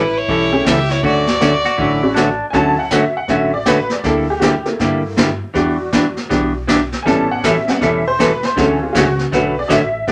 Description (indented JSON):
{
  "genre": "country, western swing",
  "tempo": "159 BPM",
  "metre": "4/4",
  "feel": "swing 64% on 8ths",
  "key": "D major",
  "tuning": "A4 = 440 Hz",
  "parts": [
    { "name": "clear fiddle", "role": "melody", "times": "0.0-2.1 s", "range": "B4 to E5", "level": "-21 LUFS", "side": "equal", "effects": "none" },
    { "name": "rich fiddle", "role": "second line", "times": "0.0-2.1 s", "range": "E4 to G4", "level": "-26 LUFS", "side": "equal", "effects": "none" },
    { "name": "archtop guitar, miked and amplified", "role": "accompaniment", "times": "0.0-10.1 s", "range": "D3 to A4", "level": "-19 LUFS", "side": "equal", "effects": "none" },
    { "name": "upright bass", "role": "bass", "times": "0.0-10.1 s", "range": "E1 to G2", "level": "-29 LUFS", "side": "equal", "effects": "none" },
    { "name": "jazz brush drum kit", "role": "drums", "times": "0.3-10.1 s", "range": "brushed snare drum, hi-hat, kick drum, snare drum", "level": "-23 LUFS", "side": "equal", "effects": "none" },
    { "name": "honky-tonk upright piano", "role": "accompaniment", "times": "0.5-10.1 s", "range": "E3 to A5", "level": "-20 LUFS", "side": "equal", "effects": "none" },
    { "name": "clean lap steel guitar", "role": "second line", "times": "1.7-2.5 s", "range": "D4 to F#4", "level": "-23 LUFS", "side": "equal", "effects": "none" }
  ],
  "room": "wet studio reverb, RT60 0.5 s",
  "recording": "none",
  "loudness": "-16 LUFS",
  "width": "mono",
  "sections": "0.0-2.5 A section; 2.5-10.1 B section",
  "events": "honky-tonk piano solo 2.5-10.1",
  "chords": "0.0 A7; 1.0 Dmaj9; 4.0 Gm6/D; 5.6 Em7; 7.1 A7; 8.6 Dmaj7"
}